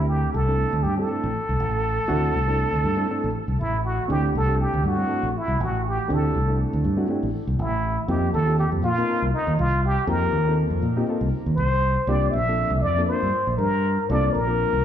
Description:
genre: electric jazz fusion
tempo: 120 BPM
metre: 4/4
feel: swing 54% on 16ths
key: unclear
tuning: A4 = 440 Hz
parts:
  - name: trumpet with plunger mute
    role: melody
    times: 0.0-14.8 s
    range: Eb4 to E5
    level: -25 LUFS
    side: equal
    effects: slapback echo, tape echo
  - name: reed electric piano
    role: accompaniment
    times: 0.0-14.8 s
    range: A3 to Bb4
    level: -28 LUFS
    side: left 1 dB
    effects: slapback echo
  - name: fingered electric bass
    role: bass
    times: 0.0-14.8 s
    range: A1 to Bb2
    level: -23 LUFS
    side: equal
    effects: none
room: light reverb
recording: live gig heard through the venue's PA, club reverb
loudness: -20 LUFS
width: side -10 dB against mid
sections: 0.0-4.1 A section; 4.1-14.8 A section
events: none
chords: 0.0 D9sus4; 8.1 F9sus4; 12.1 C9sus4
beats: | 0.10 0.60 1.10 1.60 | 2.10 2.60 3.10 3.60 | 4.10 4.60 5.09 5.59 | 6.09 6.59 7.09 7.59 | 8.09 8.59 9.09 9.59 | 10.09 10.59 11.09 11.59 | 12.09 12.59 13.09 13.60 | 14.10 14.60

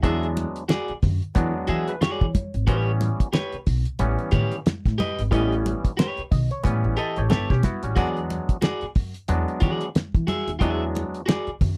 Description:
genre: funk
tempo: 91 BPM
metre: 4/4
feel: swing 60% on 16ths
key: unclear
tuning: A4 = 440 Hz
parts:
  - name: electric guitar at the edge of break-up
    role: accompaniment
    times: 0.0-11.5 s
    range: F#4 to E5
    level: -30 LUFS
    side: equal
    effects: none
  - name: auto-wah clav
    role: stabs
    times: 0.0-11.2 s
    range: E3 to D#5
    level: -31 LUFS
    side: equal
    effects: overdrive
  - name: upright bass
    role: bass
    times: 0.0-11.8 s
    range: G1 to E3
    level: -27 LUFS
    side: equal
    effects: none
  - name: cloth-damped thuddy drum kit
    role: drums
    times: 0.0-11.8 s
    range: hi-hat, kick drum, snare drum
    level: -24 LUFS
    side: equal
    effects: none
  - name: congas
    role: percussion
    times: 0.0-11.8 s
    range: none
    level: -33 LUFS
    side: equal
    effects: none
  - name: growling tenor saxophone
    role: second line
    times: 8.0-8.1 s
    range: F#4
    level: -31 LUFS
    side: equal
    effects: none
room: little or no reverb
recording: dry, close 1970s-style studio recording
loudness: -24 LUFS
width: mono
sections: 0.0-11.8 A section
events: clav fill 1.4-2.7, 6.0-8.0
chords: 0.0 E9; 2.7 A9; 8.0 E9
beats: | 0.04 0.70 1.36 2.02 | 2.68 3.34 4.00 4.66 | 5.33 5.99 6.65 7.31 | 7.97 8.63 9.29 9.95 | 10.61 11.28

